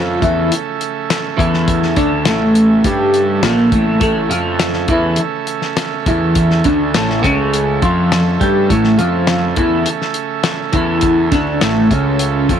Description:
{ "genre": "psychedelic rock", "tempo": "103 BPM", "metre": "4/4", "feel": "straight", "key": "unclear", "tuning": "A4 = 442 Hz", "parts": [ { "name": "combo organ", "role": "sustained chords", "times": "0.0-12.6 s", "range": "C#3 to E5", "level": "-21 LUFS", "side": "right 9 dB", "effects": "none" }, { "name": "clean electric guitar", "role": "riff", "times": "0.0-12.6 s", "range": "A2 to G4", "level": "-14 LUFS", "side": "equal", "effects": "phaser, double-tracked left and right" }, { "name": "fuzz picked electric bass", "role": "bass", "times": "0.0-12.6 s", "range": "A1 to G2", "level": "-20 LUFS", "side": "equal", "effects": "overdrive" }, { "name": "damped 70s drum kit", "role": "drums", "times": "0.2-12.6 s", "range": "hi-hat, kick drum, snare drum", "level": "-19 LUFS", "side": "left 3 dB", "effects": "none" } ], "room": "light reverb, studio ambience", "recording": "1960s-style stereo", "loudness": "-12 LUFS", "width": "side -8 dB against mid", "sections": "0.0-12.6 A section", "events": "none", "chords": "0.0 A" }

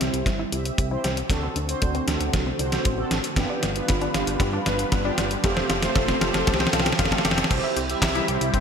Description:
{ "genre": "italo disco", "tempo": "116 BPM", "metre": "4/4", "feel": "straight", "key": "C major", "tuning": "A4 = 442 Hz", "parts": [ { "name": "lush unison pad", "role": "sustained chords", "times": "0.0-8.6 s", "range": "D3 to B4", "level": "-30 LUFS", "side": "equal", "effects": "chorus, phaser" }, { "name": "analog pluck", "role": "arpeggios", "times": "0.0-8.6 s", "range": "A3 to G4", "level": "-31 LUFS", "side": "left 3 dB", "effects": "chorus, ping-pong delay" }, { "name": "mellow synth brass", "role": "stabs", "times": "0.0-8.6 s", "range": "A3 to E5", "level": "-29 LUFS", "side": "right 3 dB", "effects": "chorus, phaser, ping-pong delay" }, { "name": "fat analog bass", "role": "bass", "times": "0.0-8.6 s", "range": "F1 to G2", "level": "-30 LUFS", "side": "equal", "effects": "none" }, { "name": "detuned 8-bit digital drum machine", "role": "drums", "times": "0.0-8.6 s", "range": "crash cymbal, handclaps, hi-hat, snare drum", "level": "-25 LUFS", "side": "equal", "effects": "gated reverb" }, { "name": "kick drum", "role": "drums", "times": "0.3-8.6 s", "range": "none", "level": "-25 LUFS", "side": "equal", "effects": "none" } ], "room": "wet lush hall reverb, RT60 2.1 s", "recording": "bright 1980s-style digital production", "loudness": "-21 LUFS", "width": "side -7 dB against mid", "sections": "0.0-7.5 A section; 7.5-8.6 B section", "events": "drum fill 0.0-7.5; filter sweep on synth arpeggio sound 0.0-7.5; filter sweep on analog synth pad 0.0-7.5", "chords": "0.0 C; 1.3 D7; 3.4 G7; 5.4 Fadd9; 7.5 C" }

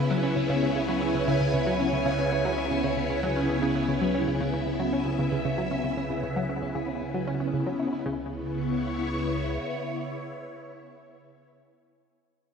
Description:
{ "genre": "ambient, sequencer-driven space music", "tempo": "115 BPM", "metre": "4/4", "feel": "straight", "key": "C# minor", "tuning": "A4 = 441 Hz", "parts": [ { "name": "phased string machine", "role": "sustained chords", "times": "0.0-11.5 s", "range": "C#3 to E5", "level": "-27 LUFS", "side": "equal", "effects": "ensemble chorus, phaser" }, { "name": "clean electric guitar", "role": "arpeggios", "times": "0.0-8.3 s", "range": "G#3 to C#5", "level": "-43 LUFS", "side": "right 1 dB", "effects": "none" }, { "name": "analog pluck", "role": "riff", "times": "0.0-8.3 s", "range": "C#3 to E4", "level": "-30 LUFS", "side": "equal", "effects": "chorus, phaser, ping-pong delay" }, { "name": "warm sub bass", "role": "bass", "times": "0.0-9.6 s", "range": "C#2", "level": "-40 LUFS", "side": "equal", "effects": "none" }, { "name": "bubbling stepped-filter texture", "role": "texture", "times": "0.0-8.1 s", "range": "E4 to G#5", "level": "-38 LUFS", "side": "equal", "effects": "chorus, built-in reverb" } ], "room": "wet plate reverb, RT60 2.7 s", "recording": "dreamy mix soaked in reverb", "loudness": "-25 LUFS", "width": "side -6 dB against mid", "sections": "0.0-8.1 A section; 8.1-12.2 B section", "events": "fade-out on sub bass 0.0-8.1", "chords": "0.0 C#m7" }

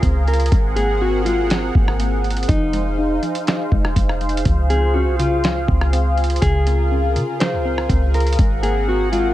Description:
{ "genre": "hip hop, atmospheric cloud-rap", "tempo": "122 BPM", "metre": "4/4", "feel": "half-time", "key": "Db major", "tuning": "A4 = 436 Hz", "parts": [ { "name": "mellow electric guitar", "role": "melody", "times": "0.0-9.3 s", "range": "Eb4 to C5", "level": "-23 LUFS", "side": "left 1 dB", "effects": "low-pass filter, tape echo" }, { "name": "warm analog pad", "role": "sustained chords", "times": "0.0-9.3 s", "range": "C4 to Gb5", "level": "-24 LUFS", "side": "equal", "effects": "chorus, sidechain pumping" }, { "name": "warbly dusty pluck", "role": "arpeggios", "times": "0.0-9.3 s", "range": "Db3 to Eb4", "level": "-28 LUFS", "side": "left 2 dB", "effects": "chorus, low-pass filter, tape echo" }, { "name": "clean 808-style bass", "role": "bass", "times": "0.0-9.3 s", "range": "F1 to Db3", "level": "-19 LUFS", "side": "equal", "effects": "none" }, { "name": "lo-fi sampler-style drum kit", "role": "drums", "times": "0.0-9.2 s", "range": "hi-hat, kick drum, rim click, snare drum", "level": "-20 LUFS", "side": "equal", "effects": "none" } ], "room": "digital ambience", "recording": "echo-heavy mix", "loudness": "-16 LUFS", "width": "side -14 dB against mid", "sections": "0.0-9.3 A section", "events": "none", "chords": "0.0 Dbmaj7; 0.5 Ab9; 2.5 Fm7; 4.5 Dbmaj7; 8.4 Ab9" }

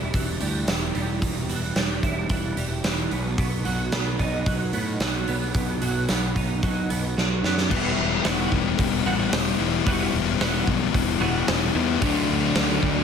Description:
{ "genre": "quiet-loud alternative rock", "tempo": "111 BPM", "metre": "4/4", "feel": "straight", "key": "E minor", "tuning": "A4 = 439 Hz", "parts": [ { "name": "twelve-string electric guitar", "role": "arpeggios", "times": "0.0-11.8 s", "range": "E2 to F#4", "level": "-29 LUFS", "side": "right 3 dB", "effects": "ensemble chorus" }, { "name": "fuzz picked electric bass", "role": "bass", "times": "0.0-13.0 s", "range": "E1 to A2", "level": "-28 LUFS", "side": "equal", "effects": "overdrive" }, { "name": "big rock drum kit", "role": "drums", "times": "0.1-13.0 s", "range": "crash cymbal, hi-hat, kick drum, snare drum", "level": "-25 LUFS", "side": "right 1 dB", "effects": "none" }, { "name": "thick fuzz guitar", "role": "riff", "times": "7.7-13.0 s", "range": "D3 to E4", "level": "-24 LUFS", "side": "left 13 dB", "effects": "distortion" }, { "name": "sludgy distorted guitar", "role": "riff", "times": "12.0-13.0 s", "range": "D3 to D4", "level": "-26 LUFS", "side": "right 9 dB", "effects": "overdrive" } ], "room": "moderate studio reverb, RT60 0.9 s", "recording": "none", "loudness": "-21 LUFS", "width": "side -7 dB against mid", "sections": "0.0-7.7 A section; 7.7-13.0 B section", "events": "drum fill 7.2-7.7", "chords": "0.0 Em; 3.1 B; 7.7 Emadd9; 12.0 D" }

